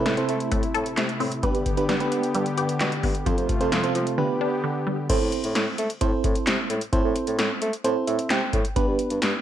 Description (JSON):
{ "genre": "synth-pop", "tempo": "131 BPM", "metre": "4/4", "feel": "straight", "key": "A minor", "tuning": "A4 = 440 Hz", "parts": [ { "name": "FM electric piano with auto-pan", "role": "accompaniment", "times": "0.0-9.4 s", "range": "B3 to G5", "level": "-26 LUFS", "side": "right 3 dB", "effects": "none" }, { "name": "warm analog pad", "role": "sustained chords", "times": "0.0-5.1 s", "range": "C3 to G4", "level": "-29 LUFS", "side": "left 1 dB", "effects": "chorus" }, { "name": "mellow bassoon", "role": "bass", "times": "0.0-9.3 s", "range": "F2 to A3", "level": "-28 LUFS", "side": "equal", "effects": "none" }, { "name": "resonant blip pluck", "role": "arpeggios", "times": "0.1-5.1 s", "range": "D3 to A4", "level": "-30 LUFS", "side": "left 1 dB", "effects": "chorus, phaser, slapback echo" }, { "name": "electro analog drum machine", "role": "drums", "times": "0.1-9.3 s", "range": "crash cymbal, handclaps, hi-hat, kick drum, snare drum", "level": "-25 LUFS", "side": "left 1 dB", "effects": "gated reverb" } ], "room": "light reverb, digital ambience", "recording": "none", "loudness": "-22 LUFS", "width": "side -11 dB against mid", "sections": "0.0-5.1 A section; 5.1-9.4 B section", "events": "FM electric piano fill 7.8-8.8", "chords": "0.0 Am; 1.4 G; 3.3 F; 4.2 G; 5.1 Am; 8.8 G" }